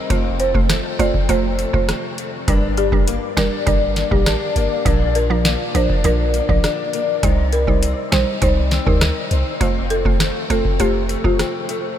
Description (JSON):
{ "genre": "dancehall", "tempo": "101 BPM", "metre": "4/4", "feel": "straight", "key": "unclear", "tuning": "A4 = 445 Hz", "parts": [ { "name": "picked acoustic archtop guitar", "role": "arpeggios", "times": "0.0-12.0 s", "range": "F2 to Eb4", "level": "-24 LUFS", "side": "left 6 dB", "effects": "ensemble chorus, diffuse ambient delay" }, { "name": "mallet-like synth pluck", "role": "accompaniment", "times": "0.1-11.4 s", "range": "F3 to C5", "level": "-24 LUFS", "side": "right 5 dB", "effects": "chorus" }, { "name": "clean 808-style bass", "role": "bass", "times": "0.1-11.4 s", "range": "F1 to D2", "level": "-21 LUFS", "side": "equal", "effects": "none" }, { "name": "booming analog drum machine", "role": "drums", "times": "0.1-11.8 s", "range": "hi-hat, kick drum, rim click, snare drum", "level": "-21 LUFS", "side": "equal", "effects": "none" }, { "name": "folk marimba with medium mallets", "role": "melody", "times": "0.4-11.4 s", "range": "F4 to D5", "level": "-24 LUFS", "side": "equal", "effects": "diffuse ambient delay" } ], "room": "light reverb, digital ambience", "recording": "none", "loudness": "-16 LUFS", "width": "side -10 dB against mid", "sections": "0.0-12.0 A section", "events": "none", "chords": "0.1 F; 2.5 Gm; 4.9 Bb; 7.2 Cm; 9.6 F" }